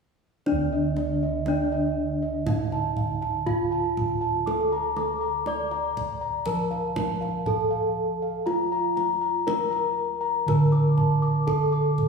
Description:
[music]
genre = Javanese gamelan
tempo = 60 BPM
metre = 4/4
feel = straight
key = D pelog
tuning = A4 = 440 Hz
[part]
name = gamelan-type bronze metallophone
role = melody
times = 0.5-12.1 s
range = D4 to D5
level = -28 LUFS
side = equal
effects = none
[part]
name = gamelan-type bossed gongs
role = arpeggios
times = 0.5-12.0 s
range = D5 to D6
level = -28 LUFS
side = left 1 dB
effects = none
[part]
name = gamelan-type bossed gongs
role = bass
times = 0.5-12.1 s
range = D2 to A4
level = -27 LUFS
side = right 1 dB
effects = none
[part]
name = kendang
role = percussion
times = 0.5-12.1 s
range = none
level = -32 LUFS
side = right 2 dB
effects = none
[sound]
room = wet scoring stage reverb, RT60 1.6 s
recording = recorded in a church or concert hall, studio reverb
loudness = -23 LUFS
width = side -5 dB against mid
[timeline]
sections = 0.5-12.1 A section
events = none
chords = none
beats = | 0.47 1.47 2.47 3.47 | 4.47 5.47 6.47 7.47 | 8.47 9.47 10.47 11.47

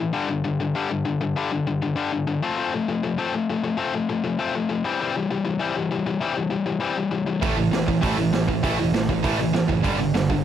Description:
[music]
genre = punk rock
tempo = 198 BPM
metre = 4/4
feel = straight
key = unclear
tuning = A4 = 440 Hz
[part]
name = tight distorted guitar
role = riff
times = 0.0-10.4 s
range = G2 to C4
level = -23 LUFS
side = left 4 dB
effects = distortion
[part]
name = tight distorted guitar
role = riff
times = 7.4-10.4 s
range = G2 to A3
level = -24 LUFS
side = right 14 dB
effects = distortion
[part]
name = fuzz picked electric bass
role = bass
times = 7.4-10.4 s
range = E1 to A1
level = -28 LUFS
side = right 2 dB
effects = overdrive
[part]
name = raw garage drum kit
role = drums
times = 7.4-10.4 s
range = hi-hat, kick drum, snare drum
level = -25 LUFS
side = right 2 dB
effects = none
[sound]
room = light reverb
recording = none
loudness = -21 LUFS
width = side -10 dB against mid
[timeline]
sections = 0.0-10.4 A section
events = none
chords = 0.1 G5; 2.4 F; 4.8 C/E; 7.4 A5; 9.8 G5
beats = | 0.15 0.45 0.75 1.06 | 1.36 1.66 1.97 2.27 | 2.57 2.88 3.18 3.48 | 3.78 4.09 4.39 4.69 | 5.00 5.30 5.60 5.91 | 6.21 6.51 6.82 7.12 | 7.42 7.73 8.03 8.33 | 8.64 8.94 9.24 9.54 | 9.85 10.15

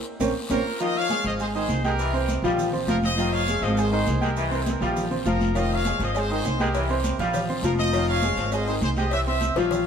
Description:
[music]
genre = latin, salsa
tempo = 202 BPM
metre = 4/4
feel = straight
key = F minor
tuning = A4 = 440 Hz
[part]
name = bright concert grand piano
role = accompaniment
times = 0.2-9.8 s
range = F3 to G6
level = -26 LUFS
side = right 1 dB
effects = none
[part]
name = upright bass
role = bass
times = 0.2-9.9 s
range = F1 to C2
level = -27 LUFS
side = equal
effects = none
[part]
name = congas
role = percussion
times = 0.2-9.9 s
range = none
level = -32 LUFS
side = equal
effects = none
[part]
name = cowbell and bongos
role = percussion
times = 0.2-0.6, 5.6-9.9 s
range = none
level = -34 LUFS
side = left 3 dB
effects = none
[part]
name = guiro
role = percussion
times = 0.2-9.9 s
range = none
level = -40 LUFS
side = left 4 dB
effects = none
[part]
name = maracas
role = percussion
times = 0.2-9.9 s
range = none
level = -43 LUFS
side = right 5 dB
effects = none
[part]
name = bright trumpet section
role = melody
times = 0.5-9.9 s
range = F4 to F5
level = -28 LUFS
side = left 1 dB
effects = none
[part]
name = brilliant trombone section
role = second line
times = 0.8-9.8 s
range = Eb3 to Ab3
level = -31 LUFS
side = left 2 dB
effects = none
[sound]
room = moderate plate reverb, RT60 2.4 s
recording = heard from further back in the room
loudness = -21 LUFS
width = side -7 dB against mid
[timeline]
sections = 0.8-9.9 A section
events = band accent 0.0-0.8; drum fill 0.2-0.8, 9.6-9.9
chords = 0.2 Bbmadd9; 0.8 Fm7; 1.4 Abmaj7; 2.0 C7; 2.6 Bbsus2; 3.2 Fm7; 3.8 Abmaj7; 4.4 C7; 5.0 Bbsus2; 5.6 Fm7; 6.1 Abmaj7; 6.7 C7; 7.3 Bbsus2; 7.9 Fm7; 8.5 Abmaj7; 9.1 C7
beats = 0.21 0.51 | 0.81 1.10 1.40 1.70 | 1.99 2.29 2.59 2.88 | 3.18 3.48 3.77 4.07 | 4.37 4.66 4.96 5.26 | 5.55 5.85 6.15 6.45 | 6.74 7.04 7.34 7.63 | 7.93 8.23 8.52 8.82 | 9.12 9.41 9.71

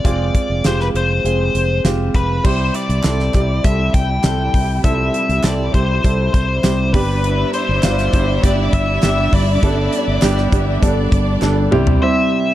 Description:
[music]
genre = piano-driven pop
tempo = 100 BPM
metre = 4/4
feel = straight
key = C major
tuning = A4 = 437 Hz
[part]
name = biting lead guitar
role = melody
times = 0.0-12.5 s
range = B4 to G5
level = -21 LUFS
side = left 3 dB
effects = overdrive
[part]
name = warm baby grand piano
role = accompaniment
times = 0.0-12.5 s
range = G2 to C5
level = -20 LUFS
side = right 2 dB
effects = none
[part]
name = fingered electric bass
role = bass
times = 0.0-12.0 s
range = F1 to C2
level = -19 LUFS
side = equal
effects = none
[part]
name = damped 70s drum kit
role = drums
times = 0.0-12.0 s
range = crash cymbal, hi-hat, kick drum, snare drum, toms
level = -17 LUFS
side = equal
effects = none
[part]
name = warm studio string section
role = sustained chords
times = 2.4-12.0 s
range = C3 to D5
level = -28 LUFS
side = equal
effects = none
[part]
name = group handclap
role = percussion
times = 3.0-11.6 s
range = none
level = -35 LUFS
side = right 4 dB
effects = none
[part]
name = bright studio violin section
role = second line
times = 7.2-11.7 s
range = D4 to E5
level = -26 LUFS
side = left 1 dB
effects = ping-pong delay
[sound]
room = light reverb, small room ambience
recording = dark, warm production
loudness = -14 LUFS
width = side -13 dB against mid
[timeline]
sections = 0.0-2.4 A section; 2.4-12.0 B section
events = drum fill 11.4-12.0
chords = 0.0 Fm; 2.4 C; 6.9 G; 11.7 C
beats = | 0.05 0.65 1.25 1.85 | 2.45 3.05 3.64 4.24 | 4.84 5.44 6.04 6.64 | 7.24 7.83 8.43 9.03 | 9.63 10.23 10.82 11.42 | 12.02

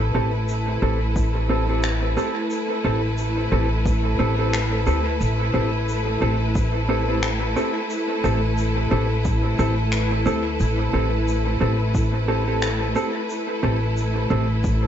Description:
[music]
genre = ambient dub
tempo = 89 BPM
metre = 4/4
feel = swing 57% on 16ths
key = A minor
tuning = A4 = 440 Hz
[part]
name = clear symphonic string section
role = sustained chords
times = 0.0-14.9 s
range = A3 to B4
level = -25 LUFS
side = equal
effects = none
[part]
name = upright bass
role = bass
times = 0.0-14.9 s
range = A1 to D2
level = -22 LUFS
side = equal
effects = none
[part]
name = mellow electric guitar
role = stabs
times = 0.1-14.5 s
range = C4 to A4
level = -26 LUFS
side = right 1 dB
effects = dub echo
[part]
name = shaker and finger snaps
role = drums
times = 0.5-14.8 s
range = none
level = -32 LUFS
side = left 1 dB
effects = dub echo
[part]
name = electronic kick drum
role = drums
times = 1.2-14.8 s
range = none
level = -24 LUFS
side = equal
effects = none
[sound]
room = light reverb, small room reverb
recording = nothing above 7.8 kHz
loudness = -19 LUFS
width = side -9 dB against mid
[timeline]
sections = 0.0-14.9 A section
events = none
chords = 0.0 Am7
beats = 0.48 1.16 1.83 | 2.51 3.18 3.86 4.53 | 5.20 5.88 6.55 7.23 | 7.90 8.57 9.25 9.92 | 10.60 11.27 11.95 12.62 | 13.29 13.97 14.64

